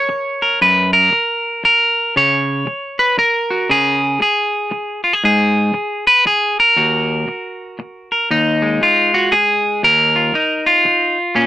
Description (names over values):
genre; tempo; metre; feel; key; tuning
folk, solo fingerstyle acoustic guitar; 117 BPM; 3/4; swing 62% on 8ths; Eb minor; A4 = 440 Hz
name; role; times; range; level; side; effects
clean electric guitar; solo; 0.0-11.5 s; Eb2 to Db5; -12 LUFS; equal; none
room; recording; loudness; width
light reverb; nothing above 11.0 kHz; -12 LUFS; side -14 dB against mid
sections
0.0-8.3 A section; 8.3-11.5 B section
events
none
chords
0.0 Gb; 2.2 Db5; 5.2 Ab5; 6.8 Ebm; 8.3 Ebsus2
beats
0.10 | 0.61 1.13 1.64 | 2.15 2.67 3.18 | 3.70 4.21 4.72 | 5.24 5.75 6.26 | 6.77 7.28 7.79 | 8.30 8.82 9.33 | 9.84 10.35 10.86 | 11.37